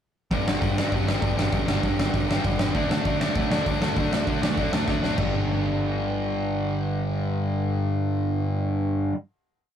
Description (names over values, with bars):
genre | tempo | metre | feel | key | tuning
punk rock | 197 BPM | 4/4 | straight | unclear | A4 = 443 Hz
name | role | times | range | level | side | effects
raw garage guitar | riff | 0.3-9.1 s | G2 to D4 | -28 LUFS | right 2 dB | overdrive
sludgy distorted guitar | riff | 0.3-9.1 s | G2 to D4 | -28 LUFS | left 3 dB | overdrive
modern bright picked electric bass | bass | 0.3-9.1 s | G1 to D3 | -29 LUFS | equal | none
big rock drum kit | drums | 0.3-5.3 s | crash cymbal, hi-hat, kick drum, snare drum | -26 LUFS | equal | none
room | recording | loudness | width
moderate booth ambience, RT60 0.1 s | rough rehearsal-room recording | -22 LUFS | side -9 dB against mid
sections
0.3-5.2 verse; 5.2-7.6 final chord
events
drum fill 4.9-5.2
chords
0.3 G5; 2.7 D5; 5.2 G5